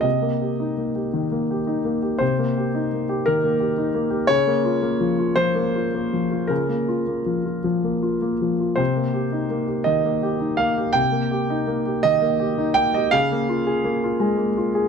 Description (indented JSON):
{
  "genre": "neoclassical minimalist piano",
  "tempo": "52-59 BPM (dotted quarters)",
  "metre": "6/8",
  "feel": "rubato",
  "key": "unclear",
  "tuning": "A4 = 440 Hz",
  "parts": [
    { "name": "warm concert grand piano", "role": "solo", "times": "0.0-14.9 s", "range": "C3 to G5", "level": "-19 LUFS", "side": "equal", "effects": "none" }
  ],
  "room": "light reverb",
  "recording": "close, detailed microphones",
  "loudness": "-19 LUFS",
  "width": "side -6 dB against mid",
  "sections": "0.0-14.9 A section",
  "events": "none",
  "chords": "0.0 Cm7; 4.3 Bbm/Db; 8.8 Cm7; 13.1 Bbm7/Db"
}